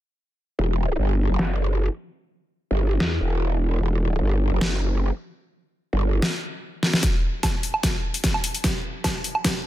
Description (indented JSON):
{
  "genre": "heavy wobble dubstep",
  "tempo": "149 BPM",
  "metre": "4/4",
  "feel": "half-time",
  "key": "E minor",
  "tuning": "A4 = 440 Hz",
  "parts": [
    { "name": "growl bass", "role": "bass", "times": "0.6-6.2 s", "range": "E1 to E2", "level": "-21 LUFS", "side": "equal", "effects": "chorus, overdrive" },
    { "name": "dubstep drum kit", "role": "drums", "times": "1.4-9.5 s", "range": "hi-hat, snare drum, woodblock", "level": "-24 LUFS", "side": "equal", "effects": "overdrive, low-pass filter on snare, low-pass filter on hats, low-pass filter on perc" },
    { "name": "electronic kick drum", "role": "drums", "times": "7.0-9.5 s", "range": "none", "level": "-25 LUFS", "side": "equal", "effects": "overdrive" }
  ],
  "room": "digital ambience",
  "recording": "dense, heavily limited modern master, high-pass filter",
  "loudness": "-21 LUFS",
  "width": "side -14 dB against mid",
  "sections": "0.6-7.0 A section; 7.0-9.7 B section",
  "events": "filter sweep on drum 0.6-7.0; drum fill 6.8, 7.0-9.7; build-up 7.0-9.7; filter sweep 7.0-9.7",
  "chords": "none"
}